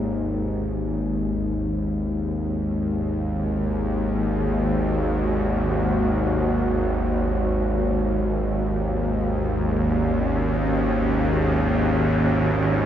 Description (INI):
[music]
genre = dark ambient drone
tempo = free time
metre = none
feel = none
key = unclear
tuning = A4 = 440 Hz
[part]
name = dark analog pad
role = sustained chords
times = 0.0-12.9 s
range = G#3 to D#5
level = -26 LUFS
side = equal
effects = chorus
[part]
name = bowed-like drone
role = drone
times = 0.0-12.9 s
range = G#1 to D#2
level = -22 LUFS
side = equal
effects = built-in reverb
[part]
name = bronze singing bowl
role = texture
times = 0.0-12.9 s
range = none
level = barely audible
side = none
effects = none
[sound]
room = wet lush hall reverb, RT60 2.8 s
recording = dreamy mix soaked in reverb, nothing above 7.8 kHz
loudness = -21 LUFS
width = side -10 dB against mid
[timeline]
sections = 0.0-12.9 A section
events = none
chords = 0.0 G#5; 9.9 C#sus4